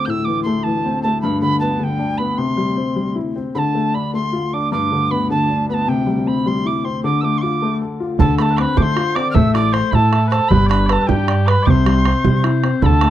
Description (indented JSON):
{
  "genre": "celtic folk, Celtic jig",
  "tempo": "103 BPM (dotted quarters)",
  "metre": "6/8",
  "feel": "straight",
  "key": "unclear",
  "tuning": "A4 = 440 Hz",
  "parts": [
    { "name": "wooden whistle", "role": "melody", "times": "0.0-13.1 s", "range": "G5 to G6", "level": "-21 LUFS", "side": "right 4 dB", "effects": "none" },
    { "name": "clear upright piano", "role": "accompaniment", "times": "0.0-13.1 s", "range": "G2 to E5", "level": "-19 LUFS", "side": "left 4 dB", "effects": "none" },
    { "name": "warm cello", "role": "drone", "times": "0.0-8.2 s", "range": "D2", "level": "-25 LUFS", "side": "equal", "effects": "none" },
    { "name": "mellow small bagpipes", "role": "second line", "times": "8.2-13.1 s", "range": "G4 to E5", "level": "-26 LUFS", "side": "left 5 dB", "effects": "none" },
    { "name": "upright bass", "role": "bass", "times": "8.2-13.1 s", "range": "G1 to D3", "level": "-17 LUFS", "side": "right 1 dB", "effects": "none" },
    { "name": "bodhran", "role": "percussion", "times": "8.2-13.1 s", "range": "none", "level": "-20 LUFS", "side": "right 6 dB", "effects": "none" }
  ],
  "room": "studio reverb",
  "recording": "dry, close 1970s-style studio recording",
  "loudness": "-15 LUFS",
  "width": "side -12 dB against mid",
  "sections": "0.0-8.2 A section; 8.2-13.1 A section",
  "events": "none",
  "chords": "0.1 Am; 1.2 G; 2.4 Cadd9; 3.5 Dm; 4.7 Gadd9; 5.9 Cadd9; 7.0 Dm; 8.2 Dm7; 9.4 Am; 10.5 G; 11.7 C",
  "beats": "| 0.07 0.65 | 1.23 1.81 | 2.39 2.97 | 3.55 4.13 | 4.71 5.29 | 5.87 6.45 | 7.03 7.61 | 8.19 8.77 | 9.35 9.93 | 10.51 11.09 | 11.67 12.25 | 12.82"
}